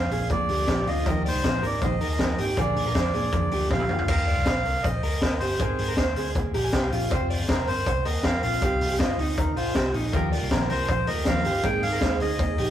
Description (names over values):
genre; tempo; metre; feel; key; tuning
jangly indie pop; 159 BPM; 4/4; straight; Eb major; A4 = 437 Hz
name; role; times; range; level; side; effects
melodica; melody; 0.0-12.7 s; Bb4 to G5; -29 LUFS; right 1 dB; none
bright upright piano; accompaniment; 0.0-12.7 s; C4 to Bb5; -38 LUFS; right 2 dB; none
fingerpicked steel-string acoustic guitar; accompaniment; 0.0-4.1, 10.1-12.7 s; Bb2 to C5; -30 LUFS; right 2 dB; none
electric guitar through a small old amp; arpeggios; 0.0-12.7 s; Eb4 to D5; -30 LUFS; right 2 dB; analog delay
vintage muted picked electric bass; bass; 0.0-12.7 s; F1 to Bb2; -29 LUFS; left 1 dB; none
raw garage drum kit; drums; 0.1-12.7 s; crash cymbal, hi-hat, kick drum, snare drum, toms; -26 LUFS; left 1 dB; none
room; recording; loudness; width
light reverb; rough rehearsal-room recording, warm saturation; -22 LUFS; side -11 dB against mid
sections
0.0-4.1 A section; 4.1-12.7 B section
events
drum fill 3.7-4.1; upright piano fill 6.4-7.1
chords
0.0 Bb; 1.1 Ebadd9; 2.6 Bb; 4.1 Ebadd9; 5.6 Abadd9; 7.1 Fsus2; 8.6 Ebadd9; 11.6 Abadd9